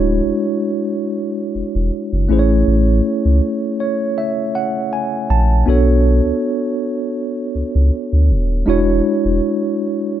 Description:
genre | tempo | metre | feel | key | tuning
contemporary R&B | 80 BPM | 4/4 | swing 54% on 16ths | A major | A4 = 441 Hz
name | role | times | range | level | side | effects
tine electric piano | accompaniment | 0.0-10.2 s | G#3 to A5 | -17 LUFS | equal | medium stereo tremolo
saturated sub bass | bass | 0.0-9.4 s | D1 to D2 | -15 LUFS | equal | none
room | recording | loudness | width
little or no reverb | none | -15 LUFS | side -11 dB against mid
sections
0.0-10.2 A section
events
tine electric piano fill 3.4-5.7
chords
0.0 Dmaj9#11; 2.3 Amaj7; 5.7 Bm9; 8.7 E13

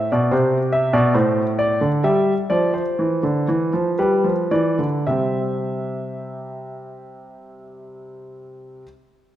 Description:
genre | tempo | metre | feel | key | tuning
classical, baroque-style two-part invention for grand piano | 52-74 BPM | 3/4 | straight | C major | A4 = 438 Hz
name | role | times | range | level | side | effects
warm grand piano | solo | 0.0-8.8 s | A2 to E5 | -19 LUFS | equal | none
room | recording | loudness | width
moderate concert hall reverb, RT60 1.8 s | none | -17 LUFS | side -12 dB against mid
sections
0.0-5.1 A section; 5.1-8.5 B section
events
slowing down 0.0-5.1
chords
0.0 Am (rootless); 1.1 D5/A; 2.0 G7sus4; 4.0 G7; 5.1 C

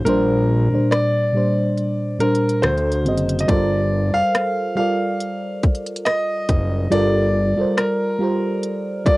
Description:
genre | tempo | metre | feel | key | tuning
contemporary R&B | 70 BPM | 4/4 | swing 54% on 16ths | G minor | A4 = 440 Hz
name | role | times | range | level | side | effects
clear baby grand piano | melody | 0.0-9.2 s | Bb4 to F5 | -22 LUFS | equal | none
mellow FM electric piano | accompaniment | 0.0-9.2 s | Bb2 to Eb5 | -20 LUFS | equal | chorus, phaser, cassette tape
fat analog bass | bass | 0.0-7.7 s | F1 to D2 | -21 LUFS | equal | none
trap drum kit | drums | 0.1-9.2 s | hi-hat, kick drum, rim click | -20 LUFS | equal | cassette tape
room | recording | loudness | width
light reverb | home recording on cassette | -17 LUFS | side -20 dB against mid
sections
0.0-9.2 A section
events
break 0.0-3.5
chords
0.1 Bb69; 2.6 D7b9; 3.5 Gm11

